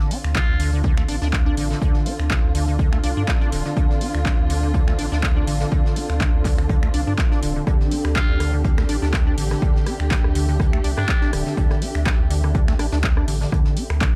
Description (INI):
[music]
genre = acid house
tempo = 123 BPM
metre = 4/4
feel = swing 55% on 16ths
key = D minor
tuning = A4 = 440 Hz
[part]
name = dark studio string section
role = sustained chords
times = 0.0-14.2 s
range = D3 to G4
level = -34 LUFS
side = equal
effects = sidechain pumping
[part]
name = acid bass, square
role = riff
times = 0.0-14.1 s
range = D3 to D4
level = -30 LUFS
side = equal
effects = overdrive, analog chorus, sidechain pumping, tape echo
[part]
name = soft brush drum kit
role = drums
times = 0.0-14.1 s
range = hi-hat, snare drum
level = -43 LUFS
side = equal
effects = none
[part]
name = ethereal airy pad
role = texture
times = 0.6-14.2 s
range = D4 to F5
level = -34 LUFS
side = equal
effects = ensemble chorus, built-in reverb, sidechain pumping
[part]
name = punchy analog drum machine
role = drums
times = 0.1-14.1 s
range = finger snaps, handclaps, hi-hat, rim click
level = -32 LUFS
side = equal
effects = none
[part]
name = warm sub bass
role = bass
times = 0.2-14.1 s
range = D1 to G2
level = -25 LUFS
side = equal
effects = tube saturation, sidechain pumping
[part]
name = trumpet with metal mute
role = melody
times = 0.4-0.7, 8.2-11.3 s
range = D4 to F4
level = -34 LUFS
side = equal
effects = dub echo
[part]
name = electronic kick drum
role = drums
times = 0.4-14.1 s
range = none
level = -22 LUFS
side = equal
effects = none
[sound]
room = studio reverb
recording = dark, warm production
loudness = -20 LUFS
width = mono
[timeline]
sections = 0.0-14.2 A section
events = none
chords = 0.0 Dm7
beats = 0.35 0.84 1.33 | 1.82 2.30 2.79 3.28 | 3.77 4.25 4.74 5.23 | 5.72 6.21 6.69 7.18 | 7.67 8.16 8.65 9.13 | 9.62 10.11 10.60 11.09 | 11.57 12.06 12.55 13.04 | 13.52 14.01